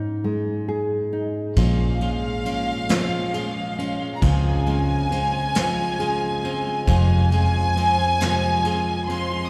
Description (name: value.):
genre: six-eight pop ballad.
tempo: 45 BPM (dotted quarters).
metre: 6/8.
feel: straight.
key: Bb minor.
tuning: A4 = 444 Hz.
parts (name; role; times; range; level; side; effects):
nylon-string guitar; accompaniment; 0.0-9.5 s; F2 to Ab4; -26 LUFS; equal; none.
dark studio violin section; second line; 1.6-9.5 s; F5 to Eb6; -27 LUFS; equal; none.
clean electric guitar; arpeggios; 1.6-9.5 s; F2 to F4; -32 LUFS; equal; none.
fingered electric bass; bass; 1.6-9.5 s; F1 to Db2; -27 LUFS; equal; none.
soft brush drum kit; drums; 1.6-9.3 s; kick drum, ride cymbal, snare drum; -30 LUFS; equal; none.
room: wet cathedral reverb, RT60 4.5 s.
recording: recorded in a church or concert hall.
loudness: -22 LUFS.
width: mono.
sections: 0.0-9.5 A section.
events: none.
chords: 0.0 Absus4; 1.6 Bbm7; 4.2 Dbmaj7; 6.9 Fm.